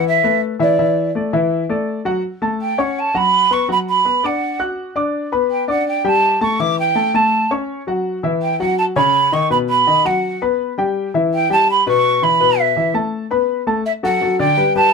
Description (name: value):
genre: latin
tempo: 165 BPM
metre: 4/4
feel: straight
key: D major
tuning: A4 = 440 Hz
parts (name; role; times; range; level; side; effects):
- breathy mellow jazz flute; melody; 0.0-14.9 s; D5 to D6; -15 LUFS; right 4 dB; none
- warm concert grand piano; accompaniment; 0.0-14.9 s; B2 to F#6; -18 LUFS; left 4 dB; none
room: light reverb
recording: close, detailed microphones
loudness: -14 LUFS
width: side -5 dB against mid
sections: 0.0-2.2 A section; 2.2-13.9 B section; 13.9-14.9 C section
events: none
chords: 0.0 Asus2; 0.8 Dadd9; 2.2 F#m; 3.7 Bm; 5.1 Gadd9; 6.6 A5; 7.3 A; 8.1 F#5; 9.5 B; 11.0 Em; 12.4 Asus2; 13.9 D